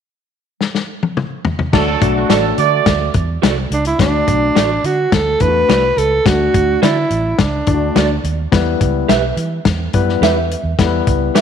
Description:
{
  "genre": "uptempo 1960s-style soul",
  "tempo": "106 BPM",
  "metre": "4/4",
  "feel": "straight",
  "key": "D major",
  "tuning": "A4 = 440 Hz",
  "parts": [
    { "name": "warm soul drum kit", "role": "drums", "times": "0.6-11.4 s", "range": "crash cymbal, hi-hat, kick drum, snare drum, toms", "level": "-17 LUFS", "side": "left 4 dB", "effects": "none" },
    { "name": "warm horn section", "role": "second line", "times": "1.7-3.1 s", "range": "D3 to D5", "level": "-17 LUFS", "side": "right 13 dB", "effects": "none" },
    { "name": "barky tine electric piano", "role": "accompaniment", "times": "1.7-11.4 s", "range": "G3 to D5", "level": "-20 LUFS", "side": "left 9 dB", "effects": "none" },
    { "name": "vintage muted fingered electric bass", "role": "bass", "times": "1.7-11.3 s", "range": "A1 to E3", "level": "-20 LUFS", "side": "right 2 dB", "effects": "none" },
    { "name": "electric guitar through a small old amp", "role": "stabs", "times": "2.3-11.4 s", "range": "F#4 to E5", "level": "-20 LUFS", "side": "right 11 dB", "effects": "ensemble chorus" },
    { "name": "breathy tenor saxophone", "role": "melody", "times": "3.7-8.2 s", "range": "D4 to B4", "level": "-16 LUFS", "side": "right 2 dB", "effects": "none" }
  ],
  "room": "moderate echo chamber reverb, RT60 1.6 s",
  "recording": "1960s-style stereo with parts hard left and right",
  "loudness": "-13 LUFS",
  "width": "side -8 dB against mid",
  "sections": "0.0-1.7 A section; 1.7-4.0 B section; 4.0-11.4 C section",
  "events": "drum fill 0.6-1.7",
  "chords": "0.0 N.C.; 1.7 D; 8.5 Em"
}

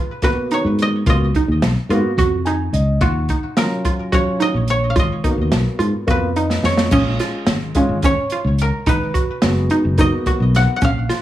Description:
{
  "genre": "progressive instrumental, band music in an uneven meter",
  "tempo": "215 BPM (eighths)",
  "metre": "7/8",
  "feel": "straight",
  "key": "G# dorian",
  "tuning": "A4 = 439 Hz",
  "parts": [
    { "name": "koto", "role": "melody", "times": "0.0-11.2 s", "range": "F#4 to F#5", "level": "-23 LUFS", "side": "left 1 dB", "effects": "plate reverb, digital delay" },
    { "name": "hollow square pluck", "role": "arpeggios", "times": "0.0-11.2 s", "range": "C#4 to F#4", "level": "-22 LUFS", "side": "right 3 dB", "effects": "chorus, plate reverb" },
    { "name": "dark concert grand piano", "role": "accompaniment", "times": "0.2-10.8 s", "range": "F#3 to G#5", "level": "-24 LUFS", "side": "left 1 dB", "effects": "plate reverb" },
    { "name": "open jazz drum kit", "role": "drums", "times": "0.2-11.2 s", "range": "crash cymbal, hi-hat, kick drum, snare drum", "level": "-20 LUFS", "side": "equal", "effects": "none" },
    { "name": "fingered electric bass", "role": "bass", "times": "0.6-11.1 s", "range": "F#1 to G#2", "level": "-18 LUFS", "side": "equal", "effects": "none" },
    { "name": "egg shaker", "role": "percussion", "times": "6.9-11.2 s", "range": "none", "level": "-40 LUFS", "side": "left 6 dB", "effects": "none" }
  ],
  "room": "light reverb",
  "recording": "small room ambience",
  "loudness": "-15 LUFS",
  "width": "side -13 dB against mid",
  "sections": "0.0-6.9 A section; 6.9-11.2 B section",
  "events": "grand piano fill 2.2-3.0, 6.1-6.9; drum fill 6.5-6.9",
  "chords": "0.0 G#m7; 3.0 D#m7; 5.0 G#m7; 6.9 A#m7; 8.9 G#m7"
}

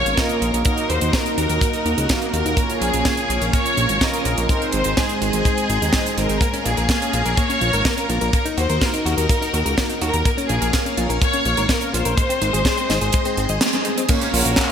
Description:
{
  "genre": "italo disco",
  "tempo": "125 BPM",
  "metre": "4/4",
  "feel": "straight",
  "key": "Bb minor",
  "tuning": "A4 = 441 Hz",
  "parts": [
    { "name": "rich symphonic violin section", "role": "melody", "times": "0.0-14.7 s", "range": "Gb4 to Db5", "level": "-23 LUFS", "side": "left 1 dB", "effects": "digital delay" },
    { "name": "string machine, full ensemble", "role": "sustained chords", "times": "0.0-14.7 s", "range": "Ab3 to Db6", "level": "-26 LUFS", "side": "left 1 dB", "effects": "ensemble chorus" },
    { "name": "mellow synth brass", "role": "stabs", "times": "0.0-6.4, 14.1-14.7 s", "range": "Ab3 to F5", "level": "-25 LUFS", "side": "right 2 dB", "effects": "chorus" },
    { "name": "fat analog bass", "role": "bass", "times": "0.0-14.6 s", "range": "Ab1 to Eb2", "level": "-23 LUFS", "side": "equal", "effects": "none" },
    { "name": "tight funk drum kit", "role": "drums", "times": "0.1-14.7 s", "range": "crash cymbal, handclaps, hi-hat, snare drum", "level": "-24 LUFS", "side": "right 2 dB", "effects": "studio reverb" },
    { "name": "kick drum", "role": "drums", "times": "0.2-14.7 s", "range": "none", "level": "-21 LUFS", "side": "equal", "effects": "studio reverb" },
    { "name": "direct-recorded clean electric guitar", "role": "arpeggios", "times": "6.4-14.7 s", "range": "Ab3 to Eb5", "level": "-27 LUFS", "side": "left 4 dB", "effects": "analog chorus, ping-pong delay" }
  ],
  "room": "moderate lush hall reverb, RT60 2.0 s, studio ambience",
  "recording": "bright 1980s-style digital production",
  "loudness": "-17 LUFS",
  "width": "side -8 dB against mid",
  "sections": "0.0-14.1 A section",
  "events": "band accent 13.6",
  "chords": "0.0 Bbm; 0.7 Ebm; 2.6 Bbm; 4.5 Ab; 6.4 Bbm; 8.3 Ebm; 10.3 Bbm; 12.2 Ab; 14.1 Bbm"
}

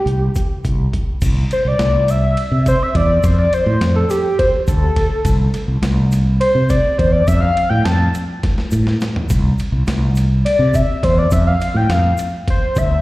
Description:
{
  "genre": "progressive instrumental, band music in an uneven meter",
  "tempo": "208 BPM (eighths)",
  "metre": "7/8",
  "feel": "straight",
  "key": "C major",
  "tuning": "A4 = 440 Hz",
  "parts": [
    { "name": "pulse-width lead", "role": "melody", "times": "0.0-13.0 s", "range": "G4 to A5", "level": "-18 LUFS", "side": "left 1 dB", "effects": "chorus, slapback echo" },
    { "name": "mellow fretless electric bass", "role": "bass", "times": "0.1-13.0 s", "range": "C2 to C3", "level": "-15 LUFS", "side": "equal", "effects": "none" },
    { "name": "boom bap sampler-style drum kit", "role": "drums", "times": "0.1-12.9 s", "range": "crash cymbal, hi-hat, kick drum, ride cymbal, snare drum, toms", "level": "-21 LUFS", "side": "equal", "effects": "overdrive" },
    { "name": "egg shaker", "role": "percussion", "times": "0.4-13.0 s", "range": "none", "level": "-39 LUFS", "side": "left 1 dB", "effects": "none" }
  ],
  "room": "light reverb, digital ambience",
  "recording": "live gig heard through the venue's PA, recital hall reverb",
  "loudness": "-13 LUFS",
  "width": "side -18 dB against mid",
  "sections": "0.0-1.2 A section; 1.2-13.0 B section",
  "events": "analog synth lead solo 1.2-13.0; drum fill 8.4-9.3",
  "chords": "0.0 C5; 1.2 C; 3.2 F; 5.3 N.C.; 7.3 F; 9.3 N.C."
}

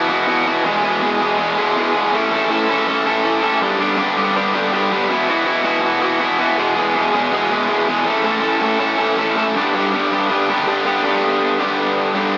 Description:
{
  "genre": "rock",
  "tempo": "162 BPM",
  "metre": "4/4",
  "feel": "straight",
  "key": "unclear",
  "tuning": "A4 = 441 Hz",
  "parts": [
    { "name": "raw garage guitar", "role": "solo", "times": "0.0-12.4 s", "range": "E2 to A4", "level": "-14 LUFS", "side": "equal", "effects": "overdrive, tape echo" }
  ],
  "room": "light reverb, digital ambience",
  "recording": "echo-heavy mix, small speaker sound",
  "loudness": "-14 LUFS",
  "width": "side -21 dB against mid",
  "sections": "0.0-11.0 A section; 11.0-12.4 B section",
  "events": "none",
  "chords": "0.0 Bsus4; 0.7 E; 2.1 A; 3.6 G; 5.1 Bsus4; 6.6 E; 8.1 A; 9.5 G"
}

